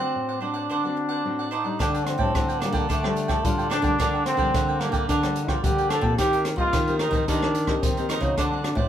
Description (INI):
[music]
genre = samba and choro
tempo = 110 BPM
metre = 4/4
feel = straight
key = unclear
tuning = A4 = 440 Hz
[part]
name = clear trombone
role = melody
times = 0.0-8.8 s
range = A3 to A4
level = -26 LUFS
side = equal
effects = none
[part]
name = cavaquinho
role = accompaniment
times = 0.0-8.9 s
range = D4 to G5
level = -30 LUFS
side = right 4 dB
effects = none
[part]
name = nylon-string guitar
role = accompaniment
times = 0.0-8.9 s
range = A2 to G4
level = -31 LUFS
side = left 4 dB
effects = none
[part]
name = nylon-string guitar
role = bass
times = 1.8-8.9 s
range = A2 to G3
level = -28 LUFS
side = equal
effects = none
[part]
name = open jazz drum kit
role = drums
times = 1.8-8.9 s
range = hi-hat, kick drum, rim click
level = -26 LUFS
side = equal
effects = none
[sound]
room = moderate large studio reverb, RT60 0.8 s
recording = band playing live in one room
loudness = -21 LUFS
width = side -10 dB against mid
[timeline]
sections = 0.0-8.9 A section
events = none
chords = 0.0 D7; 1.8 Dsus4; 4.0 Gm/D; 6.2 Cm7/Eb; 8.4 D7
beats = 0.15 0.70 1.25 | 1.80 2.35 2.90 3.44 | 3.99 4.54 5.09 5.64 | 6.18 6.73 7.28 7.83 | 8.38